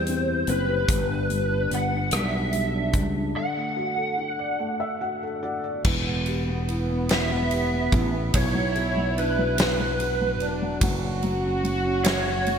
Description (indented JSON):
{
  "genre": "six-eight pop ballad",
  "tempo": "48 BPM (dotted quarters)",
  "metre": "6/8",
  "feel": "straight",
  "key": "unclear",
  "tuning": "A4 = 440 Hz",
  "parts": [
    { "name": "lead guitar through a small cranked amp", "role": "melody", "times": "0.0-12.6 s", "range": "B4 to F#5", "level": "-27 LUFS", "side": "right 1 dB", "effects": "overdrive, ensemble chorus" },
    { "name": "felt-muted upright piano", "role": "accompaniment", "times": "0.0-12.6 s", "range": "B2 to F#5", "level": "-29 LUFS", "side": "left 1 dB", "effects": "wide subtle chorus" },
    { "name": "sustaining fretless electric bass", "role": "bass", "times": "0.0-12.6 s", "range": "E1 to E2", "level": "-28 LUFS", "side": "equal", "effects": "none" },
    { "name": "huge arena drum kit", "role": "drums", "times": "0.1-12.6 s", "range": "crash cymbal, hi-hat, kick drum, ride cymbal, rim click, snare drum", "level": "-27 LUFS", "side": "equal", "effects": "gated reverb" },
    { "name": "warm French horn section", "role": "second line", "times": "5.9-12.6 s", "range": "B3 to F#4", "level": "-29 LUFS", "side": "right 2 dB", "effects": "ping-pong delay" }
  ],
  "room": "moderate lush hall reverb, RT60 2.7 s",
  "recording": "bright 1980s-style digital production",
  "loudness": "-22 LUFS",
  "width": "side -7 dB against mid",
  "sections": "0.0-5.9 A section; 5.9-12.6 B section",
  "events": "break 3.4-5.9; felt piano fill 4.6-5.9",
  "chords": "0.0 C; 0.9 G; 3.4 Dadd9; 5.9 Em; 8.3 Bm; 10.8 F#5"
}